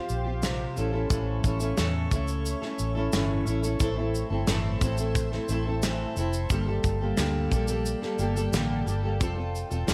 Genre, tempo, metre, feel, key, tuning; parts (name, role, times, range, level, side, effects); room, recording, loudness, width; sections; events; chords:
acoustic pop; 89 BPM; 4/4; straight; A4 = 441 Hz
fingerpicked plugged-in steel-string acoustic guitar; accompaniment; 0.0-9.9 s; G2 to A4; -32 LUFS; equal; double-tracked
glassy FM pad; sustained chords; 0.0-9.9 s; G4 to C#6; -41 LUFS; equal; ensemble chorus, built-in reverb
vintage muted fingered electric bass; bass; 0.1-9.9 s; E1 to E2; -32 LUFS; equal
modern studio drum kit; drums; 0.1-9.9 s; kick drum, shaker, snare drum; -32 LUFS; equal
small room ambience; -27 LUFS; mono
0.0-3.8 A section; 3.8-9.9 B section
0.0 Csus4; 0.8 A; 3.8 Am; 6.5 Gmadd9; 9.2 Fadd9